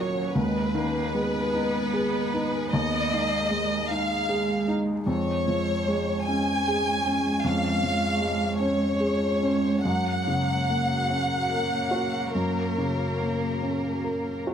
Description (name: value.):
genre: neoclassical piano and strings.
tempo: 46-52 BPM (dotted quarters).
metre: 6/8.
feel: rubato.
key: G# dorian.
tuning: A4 = 436 Hz.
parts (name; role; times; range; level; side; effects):
rich chamber violin section; melody; 0.0-14.4 s; A#4 to G#5; -27 LUFS; equal; none.
warm cello; second line; 0.0-14.5 s; F#3 to B3; -32 LUFS; right 4 dB; none.
felt-muted upright piano; accompaniment; 0.0-14.5 s; D#2 to A#4; -27 LUFS; equal; none.
deep dark ambient pad; sustained chords; 0.0-14.5 s; G#3 to F#5; -34 LUFS; left 1 dB; chorus, built-in reverb.
room: light reverb.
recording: close, detailed microphones.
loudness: -23 LUFS.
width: side -8 dB against mid.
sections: 0.0-14.5 A section.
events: none.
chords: 0.4 G#m/D#; 5.1 C#/E#; 9.8 F#.